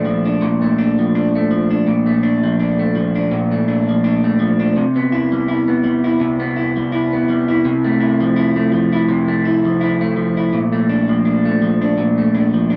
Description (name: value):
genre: indie pop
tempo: 83 BPM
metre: 4/4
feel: swing 55% on 16ths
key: unclear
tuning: A4 = 439 Hz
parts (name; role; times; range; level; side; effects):
- electric guitar through a small old amp; solo; 0.0-12.8 s; Bb2 to E4; -16 LUFS; equal; subtle chorus, warbly pitch drift
room: moderate small room reverb, RT60 0.5 s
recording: dark, warm production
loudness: -16 LUFS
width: mono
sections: 0.0-12.8 A section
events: none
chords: 0.0 Bbmaj7; 4.7 Cmaj7; 7.6 Fmaj7/C; 10.5 Bbmaj7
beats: 0.41 1.13 | 1.85 2.58 3.30 4.03 | 4.75 5.47 6.19 6.92 | 7.64 8.36 9.09 9.81 | 10.53 11.26 11.98 12.70